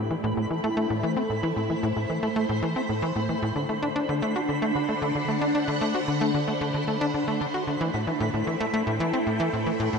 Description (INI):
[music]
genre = ambient, sequencer-driven space music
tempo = 113 BPM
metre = 4/4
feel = straight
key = A dorian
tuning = A4 = 442 Hz
[part]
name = phased string machine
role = sustained chords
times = 0.0-10.0 s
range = D3 to G5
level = -28 LUFS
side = equal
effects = ensemble chorus, phaser
[part]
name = tight sequencer bass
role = riff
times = 0.0-10.0 s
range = A2 to F#4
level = -26 LUFS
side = equal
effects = cassette tape, ping-pong delay
[part]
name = twinkling granular texture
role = texture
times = 0.0-10.0 s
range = B5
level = -35 LUFS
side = right 3 dB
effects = built-in reverb
[sound]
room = wet huge ambient reverb, RT60 8.8 s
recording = in a vast, echoing space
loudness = -24 LUFS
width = side -5 dB against mid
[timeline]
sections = 0.0-10.0 A section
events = none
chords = 0.0 Am7; 3.6 D7; 7.8 Am7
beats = 0.37 0.90 | 1.44 1.97 2.50 3.03 | 3.56 4.09 4.62 5.15 | 5.68 6.21 6.75 7.28 | 7.81 8.34 8.87 9.40 | 9.93